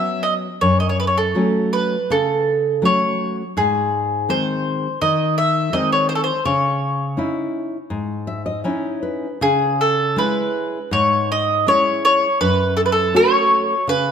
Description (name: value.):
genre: fado.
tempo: 82 BPM.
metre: 4/4.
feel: rubato.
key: C# minor.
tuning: A4 = 440 Hz.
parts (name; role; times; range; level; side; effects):
mandolin; melody; 0.0-14.1 s; G#4 to E5; -17 LUFS; equal; none.
nylon-string guitar; accompaniment; 0.0-14.1 s; F#2 to E5; -22 LUFS; left 1 dB; none.
room: moderate scoring stage reverb, RT60 1.7 s.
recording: none.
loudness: -16 LUFS.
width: side -7 dB against mid.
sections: 0.0-9.4 A section; 9.4-14.1 A section.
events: nylon-string guitar fill 7.9-9.4.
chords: 0.0 Bsus2; 0.6 F#m; 3.6 G#; 6.4 C#madd9; 9.4 C#m; 12.4 F#m.